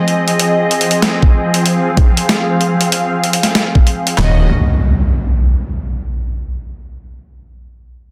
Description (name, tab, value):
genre	glitch hop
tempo	95 BPM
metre	4/4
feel	swing 63% on 16ths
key	unclear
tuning	A4 = 440 Hz
part	bright symphonic string section	sustained chords	0.0-4.5 s	Eb3 to F5	-18 LUFS	equal	sidechain pumping, low-pass filter
part	boom bap sampler-style drum kit	drums	0.1-4.2 s	hi-hat, rim click, snare drum	-19 LUFS	equal	studio reverb
part	pop drum kit	drums	1.2-4.4 s	handclaps, kick drum, snare drum	-12 LUFS	equal	overdrive, studio reverb
part	phased detuned saw bass	bass	4.2-4.5 s	Eb1	-15 LUFS	equal	phaser, tube saturation
part	impact	sound effects	4.2-6.7 s	none	-18 LUFS	equal	none
room	light reverb, digital ambience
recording	dense, heavily limited modern master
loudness	-14 LUFS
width	mono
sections	0.0-4.2 A section; 4.2-6.7 B section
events	none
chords	0.0 Fm7; 4.2 N.C.